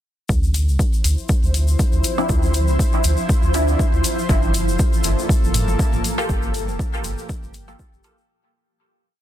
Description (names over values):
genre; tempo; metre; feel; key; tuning
dub techno; 120 BPM; 4/4; swing 55% on 16ths; D minor; A4 = 440 Hz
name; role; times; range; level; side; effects
granular cloud pad; sustained chords; 1.2-8.3 s; F3 to C5; -26 LUFS; equal; built-in reverb, sidechain pumping
warm sub bass; bass; 0.3-8.0 s; F1 to D2; -20 LUFS; equal; sidechain pumping
electronic kick drum; drums; 0.3-7.9 s; none; -20 LUFS; equal; none
tube shaker; percussion; 0.3-8.3 s; none; -30 LUFS; left 6 dB; none
electronic hi-hat; drums; 0.5-8.2 s; none; -27 LUFS; left 1 dB; none
filtered dub chord stab; stabs; 2.2-8.2 s; F3 to A4; -26 LUFS; equal; chorus, phaser, sidechain pumping, dub echo
electronic toms; percussion; 5.5-7.8 s; none; -28 LUFS; right 2 dB; sidechain pumping on toms
room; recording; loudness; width
little or no reverb; dense, heavily limited modern master; -16 LUFS; side -12 dB against mid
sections
0.3-8.3 groove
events
fade-out 5.6-8.3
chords
0.3 Dm9; 4.3 Gm9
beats
| 0.29 0.79 1.29 1.79 | 2.29 2.79 3.29 3.79 | 4.29 4.79 5.29 5.79 | 6.29 6.79 7.29 7.79